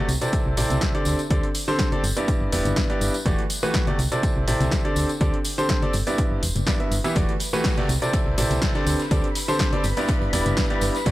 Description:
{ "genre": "piano house", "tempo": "123 BPM", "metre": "4/4", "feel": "straight", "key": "unclear", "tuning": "A4 = 439 Hz", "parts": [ { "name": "clear concert grand piano", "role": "riff", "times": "0.0-11.1 s", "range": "G2 to E5", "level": "-24 LUFS", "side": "right 1 dB", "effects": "sidechain pumping, tape echo" }, { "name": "solid FM bass", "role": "bass", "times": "0.1-11.1 s", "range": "E1 to D2", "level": "-25 LUFS", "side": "equal", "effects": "tube saturation, sidechain pumping" }, { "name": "punchy analog drum machine", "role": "drums", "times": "0.1-11.1 s", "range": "hi-hat, snare drum", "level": "-31 LUFS", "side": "equal", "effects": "none" }, { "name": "tambourine and congas", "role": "percussion", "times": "0.1-11.1 s", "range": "none", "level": "-31 LUFS", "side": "left 2 dB", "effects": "none" }, { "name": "electronic kick drum", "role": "drums", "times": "0.3-11.1 s", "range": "none", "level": "-25 LUFS", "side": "equal", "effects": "none" }, { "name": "analog string pad", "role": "sustained chords", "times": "7.2-11.1 s", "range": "B4 to B5", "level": "-34 LUFS", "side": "left 1 dB", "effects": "ensemble chorus, sidechain pumping" }, { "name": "oversized low-tuned drum kit", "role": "drums", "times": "7.2-11.1 s", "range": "hi-hat, snare drum", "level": "-37 LUFS", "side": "left 2 dB", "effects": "high-pass filter on hats, high-pass filter on snare, high-pass filter on room" } ], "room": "small room ambience", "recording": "dry, gritty hardware recording", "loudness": "-20 LUFS", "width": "side -16 dB against mid", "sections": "0.0-11.1 A section", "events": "none", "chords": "0.1 C69; 1.1 D7sus4; 2.0 G6; 3.3 Em11; 4.0 C69; 5.0 D7sus4; 5.9 G6; 7.2 Em11; 7.9 C69; 8.9 D7sus4; 9.8 G6" }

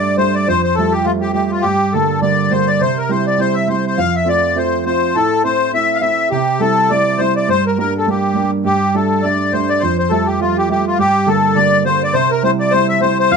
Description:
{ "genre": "celtic folk, Celtic reel", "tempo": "206 BPM", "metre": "4/4", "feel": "swing 56% on 8ths", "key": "G dorian", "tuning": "A4 = 441 Hz", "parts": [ { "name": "accordion", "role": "melody", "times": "0.0-13.4 s", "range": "F4 to F5", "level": "-15 LUFS", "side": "left 3 dB", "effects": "light tremolo tuning" }, { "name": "warm concert grand piano", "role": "accompaniment", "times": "0.0-13.4 s", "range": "F2 to F4", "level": "-17 LUFS", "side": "right 5 dB", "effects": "none" }, { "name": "mellow small bagpipes", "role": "second line", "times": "13.3-13.4 s", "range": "F5", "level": "-12 LUFS", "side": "left 6 dB", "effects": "none" } ], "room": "moderate studio reverb, RT60 0.6 s", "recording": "close, detailed microphones", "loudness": "-13 LUFS", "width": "side -5 dB against mid", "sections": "0.0-8.7 A section; 8.7-13.4 A section", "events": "none", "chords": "0.5 Fadd9; 1.6 Gm; 2.8 C; 4.0 F; 5.2 Am; 6.3 C; 7.5 Gm; 8.7 Gsus2; 9.8 Fadd9; 11.0 Gm; 12.1 C" }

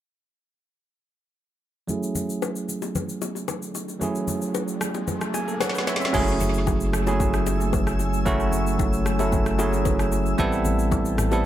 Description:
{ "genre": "amapiano", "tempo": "113 BPM", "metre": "4/4", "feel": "straight", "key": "F# minor", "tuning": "A4 = 440 Hz", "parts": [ { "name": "barky tine electric piano", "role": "accompaniment", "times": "1.9-11.5 s", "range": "F#3 to G#5", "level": "-25 LUFS", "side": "right 2 dB", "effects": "low-pass filter" }, { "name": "afro-pop drum kit", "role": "drums", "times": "1.9-11.4 s", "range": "crash cymbal, kick drum, rim click, shaker, snare drum, toms", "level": "-28 LUFS", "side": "left 1 dB", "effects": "tape echo" }, { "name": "congas and bongos", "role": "percussion", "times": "1.9-11.4 s", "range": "none", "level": "-32 LUFS", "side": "left 5 dB", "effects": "tape echo" }, { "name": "riser", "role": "sound effects", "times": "3.6-6.1 s", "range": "none", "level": "-35 LUFS", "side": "left 1 dB", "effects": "none" }, { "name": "glassy FM pad", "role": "sustained chords", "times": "6.8-11.5 s", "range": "A3 to E6", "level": "-32 LUFS", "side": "equal", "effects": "ensemble chorus, built-in reverb, sidechain pumping" }, { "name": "saturated sub bass", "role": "bass", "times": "6.1-11.5 s", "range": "F#1 to A1", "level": "-26 LUFS", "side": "equal", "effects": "none" } ], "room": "light reverb, digital ambience", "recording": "echo-heavy mix", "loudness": "-22 LUFS", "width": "side -12 dB against mid", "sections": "1.9-6.1 A section; 6.1-11.5 B section", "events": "filter sweep on tine electric piano 1.9-6.1; riser 3.6-6.1; tine electric piano fill 5.1-6.1; drum fill 5.6-6.1", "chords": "1.9 F#m9; 10.4 Am9" }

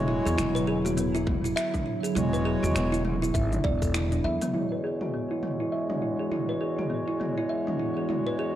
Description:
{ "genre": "organic downtempo", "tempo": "101 BPM", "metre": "4/4", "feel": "swing 59% on 16ths", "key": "E mixolydian", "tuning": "A4 = 440 Hz", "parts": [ { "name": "pedal harmonium", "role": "accompaniment", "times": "0.0-8.6 s", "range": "E2 to C#5", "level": "-33 LUFS", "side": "equal", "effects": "sidechain pumping, low-pass filter, tape echo" }, { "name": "warbly tape-like pad", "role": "sustained chords", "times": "0.0-8.6 s", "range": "D3 to F#4", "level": "-33 LUFS", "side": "equal", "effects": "chorus, built-in reverb, phaser, sidechain pumping" }, { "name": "kalimba", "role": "arpeggios", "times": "0.0-8.6 s", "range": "B3 to E5", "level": "-29 LUFS", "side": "right 1 dB", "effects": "low-pass filter, tape echo" }, { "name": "upright bass", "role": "bass", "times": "0.0-4.4 s", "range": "E1 to E2", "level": "-28 LUFS", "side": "equal", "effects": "none" }, { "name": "organic electronic drum kit", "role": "drums", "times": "0.3-8.2 s", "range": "cabasa, finger snaps, hi-hat, toms", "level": "-34 LUFS", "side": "equal", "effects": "none" }, { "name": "electronic kick drum", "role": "drums", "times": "1.3-3.9 s", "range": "none", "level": "-29 LUFS", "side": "equal", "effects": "none" } ], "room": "light reverb, digital ambience", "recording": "dry, gritty hardware recording, cassette tape", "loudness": "-25 LUFS", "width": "side -12 dB against mid", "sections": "0.0-4.5 A section; 4.5-8.6 B section", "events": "filter sweep on kalimba 4.5-8.6; filter sweep on harmonium 4.5-8.6", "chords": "0.0 Dadd9/E; 4.5 Eadd9" }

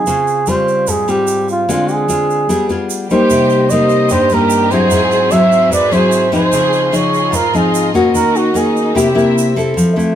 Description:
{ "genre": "bossa nova", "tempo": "149 BPM", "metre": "4/4", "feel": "straight", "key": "unclear", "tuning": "A4 = 440 Hz", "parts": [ { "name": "breathy flugelhorn", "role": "melody", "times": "0.0-9.4 s", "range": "F4 to Fb5", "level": "-14 LUFS", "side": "right 2 dB", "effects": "none" }, { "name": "nylon-string guitar", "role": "accompaniment", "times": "0.0-10.2 s", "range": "G2 to A4", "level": "-14 LUFS", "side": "left 2 dB", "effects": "none" }, { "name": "egg shaker", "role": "percussion", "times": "0.1-10.2 s", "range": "none", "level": "-27 LUFS", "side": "right 7 dB", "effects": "none" }, { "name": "dark symphonic violin section", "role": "second line", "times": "3.1-9.4 s", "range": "Eb4 to C5", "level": "-20 LUFS", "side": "equal", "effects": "none" }, { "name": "warm studio string section", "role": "sustained chords", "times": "3.3-9.8 s", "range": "C4 to C6", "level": "-23 LUFS", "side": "left 1 dB", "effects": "none" } ], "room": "moderate studio reverb, RT60 0.6 s", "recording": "band playing live in one room", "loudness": "-11 LUFS", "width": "side -10 dB against mid", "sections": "0.0-9.8 A section", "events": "none", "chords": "0.1 Dbmaj7#11; 1.7 Dm7b5; 2.5 G7b9; 3.3 Cm7; 4.9 Ab7b13; 6.5 Dbmaj9; 8.1 Ebm7; 8.9 C7" }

